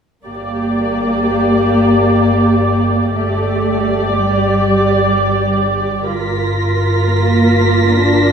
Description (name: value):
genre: cinematic, suspense film score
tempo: 62 BPM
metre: 3/4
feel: straight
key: G minor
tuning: A4 = 440 Hz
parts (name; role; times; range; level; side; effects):
- muted symphonic cello section; bass; 0.2-8.3 s; G3 to D4; -16 LUFS; right 1 dB; none
- muted studio viola section; accompaniment; 0.3-8.3 s; F4 to D5; -16 LUFS; equal; none
- muted symphonic double bass section; bass; 0.3-8.3 s; G1; -18 LUFS; left 1 dB; none
- muted chamber violin section; texture; 6.1-8.3 s; Bb6 to B6; -20 LUFS; equal; none
room: wet scoring stage reverb, RT60 1.6 s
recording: heard from further back in the room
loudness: -12 LUFS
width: side -7 dB against mid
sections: 0.3-8.3 A section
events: none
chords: 0.3 Gm; 6.1 Fsus4/G